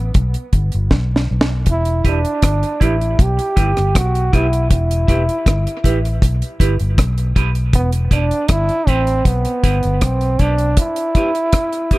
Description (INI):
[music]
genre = dub reggae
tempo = 79 BPM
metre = 4/4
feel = straight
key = E minor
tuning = A4 = 441 Hz
[part]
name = warm trombone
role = melody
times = 0.0-12.0 s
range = B3 to G4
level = -20 LUFS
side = right 1 dB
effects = dub echo
[part]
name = vintage muted fingered electric bass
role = bass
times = 0.0-10.8 s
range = E1 to B1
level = -17 LUFS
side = equal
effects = none
[part]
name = deep reggae drum kit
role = drums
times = 0.1-12.0 s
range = hi-hat, kick drum, rim click, snare drum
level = -15 LUFS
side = equal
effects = none
[part]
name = semi-hollow electric guitar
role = accompaniment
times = 2.0-12.0 s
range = E4 to B4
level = -26 LUFS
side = right 4 dB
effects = phaser, high-pass filter, dub echo
[sound]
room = studio ambience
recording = none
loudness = -14 LUFS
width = side -19 dB against mid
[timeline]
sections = 0.0-12.0 A section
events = break 0.0-1.7; drum fill 0.9-1.7; filter sweep on clean electric guitar 4.7-10.8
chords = 0.0 Em